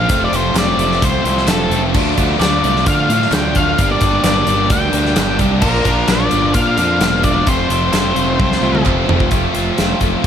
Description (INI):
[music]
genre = classic rock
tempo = 130 BPM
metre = 4/4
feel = straight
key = unclear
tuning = A4 = 441 Hz
[part]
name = octave-fuzz lead guitar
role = melody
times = 0.0-8.8 s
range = A4 to G5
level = -19 LUFS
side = left 2 dB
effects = distortion
[part]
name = tonewheel organ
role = sustained chords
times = 0.0-9.3 s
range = A3 to D5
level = -28 LUFS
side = equal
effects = none
[part]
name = biting overdriven guitar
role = riff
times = 0.0-10.3 s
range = F2 to G4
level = -20 LUFS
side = left 9 dB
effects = none
[part]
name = overdriven electric guitar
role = riff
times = 0.0-10.3 s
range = F2 to F4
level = -20 LUFS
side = right 9 dB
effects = none
[part]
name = fuzz fingered electric bass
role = bass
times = 0.0-10.3 s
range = E1 to D3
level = -20 LUFS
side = equal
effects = overdrive
[part]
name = big rock drum kit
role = drums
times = 0.1-10.3 s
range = crash cymbal, hi-hat, kick drum, snare drum, toms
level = -18 LUFS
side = equal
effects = none
[part]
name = group handclap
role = percussion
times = 0.6-9.0 s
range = none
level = -29 LUFS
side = right 8 dB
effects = none
[sound]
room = light reverb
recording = none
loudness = -12 LUFS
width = side -8 dB against mid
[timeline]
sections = 0.0-9.3 A section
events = drum fill 8.4-9.3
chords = 0.1 F; 1.9 Dm; 3.8 Gm; 5.6 Bbadd9; 7.5 F